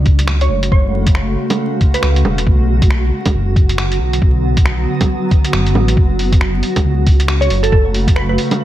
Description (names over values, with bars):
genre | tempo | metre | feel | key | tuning
future garage | 137 BPM | 4/4 | swing 60% on 16ths | F# minor | A4 = 441 Hz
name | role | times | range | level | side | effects
granular cloud pad | sustained chords | 0.0-8.6 s | C#3 to F#4 | -19 LUFS | equal | built-in reverb, sidechain pumping
dark detuned saw bass | bass | 0.0-8.4 s | E1 to C#2 | -16 LUFS | equal | sidechain pumping
electronic kick drum | drums | 0.1-8.1 s | none | -12 LUFS | equal | none
lo-fi sampler-style drum kit | drums | 0.1-8.6 s | bongos, finger snaps, hi-hat | -21 LUFS | right 2 dB | none
glassy wavetable pluck | melody | 0.4-2.2, 7.4-8.3 s | A4 to C#5 | -20 LUFS | right 3 dB | chorus, digital delay
room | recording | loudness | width
light reverb, digital ambience | vinyl crackle | -12 LUFS | side -13 dB against mid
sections
0.0-8.6 A section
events
none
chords
0.0 F#madd9; 2.5 Bm; 6.0 F#m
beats
0.28 | 0.72 1.16 1.59 2.03 | 2.47 2.91 3.35 3.78 | 4.22 4.66 5.10 5.54 | 5.97 6.41 6.85 7.29 | 7.73 8.16 8.60